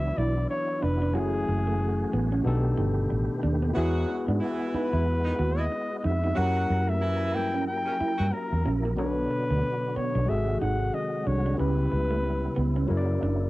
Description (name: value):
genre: R&B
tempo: 92 BPM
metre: 4/4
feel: swing 59% on 16ths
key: unclear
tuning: A4 = 439 Hz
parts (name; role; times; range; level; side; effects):
- warm flugelhorn; melody; 0.0-12.9 s; G#4 to G5; -31 LUFS; left 1 dB; cassette tape
- barky tine electric piano; accompaniment; 0.0-13.5 s; B2 to D5; -31 LUFS; left 2 dB; overdrive, cassette tape
- tonewheel organ; sustained chords; 0.0-13.5 s; B#2 to A#4; -34 LUFS; right 1 dB; fast rotary speaker, chorus vibrato, cassette tape
- vintage muted fingered electric bass; bass; 0.0-13.5 s; E#1 to G#2; -27 LUFS; equal; none
- electric guitar through a small old amp; second line; 0.2-13.4 s; A3 to F#4; -32 LUFS; right 4 dB; cassette tape
- clear saxophone section; stabs; 3.7-8.3 s; C#3 to F#4; -35 LUFS; right 2 dB; cassette tape
room: light reverb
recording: home recording on cassette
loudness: -24 LUFS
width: side -18 dB against mid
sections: 0.0-13.5 A section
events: none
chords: 0.0 D69; 1.1 F#m9; 2.4 B7alt; 3.7 Emaj9; 6.4 F#7b9; 9.0 Bm9; 10.3 G#7b9; 11.6 C#m7b5; 12.9 F#7b13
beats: 0.49 | 1.14 1.79 2.44 3.10 | 3.75 4.40 5.05 5.70 | 6.36 7.01 7.66 8.31 | 8.96 9.62 10.27 10.92 | 11.57 12.23 12.88